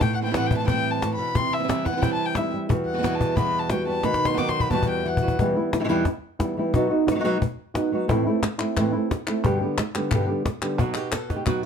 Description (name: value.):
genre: flamenco.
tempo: 178 BPM.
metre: 4/4.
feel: straight.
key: E minor.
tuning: A4 = 441 Hz.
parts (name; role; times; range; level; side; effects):
flamenco guitar; melody; 0.0-11.7 s; E2 to A4; -24 LUFS; right 1 dB; none.
warm violin; second line; 0.0-5.4 s; E5 to D6; -27 LUFS; left 4 dB; none.
flamenco guitar; stabs; 0.0-5.4, 10.8-11.7 s; E2 to F#4; -29 LUFS; right 8 dB; none.
cajon; percussion; 0.0-11.7 s; none; -26 LUFS; left 2 dB; none.
palmas hand claps; percussion; 8.1-11.6 s; none; -31 LUFS; left 3 dB; none.
room: light reverb.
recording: close, detailed microphones.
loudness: -21 LUFS.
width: side -7 dB against mid.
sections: 0.0-5.4 A section; 5.4-10.8 B section.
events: violin solo 0.0-5.4; drum fill 4.0-5.4.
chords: 0.0 Am7; 1.4 C; 2.7 Emadd9; 4.0 B; 4.7 Emadd9; 5.4 Em; 6.7 B; 8.1 Am; 9.4 G; 10.8 B.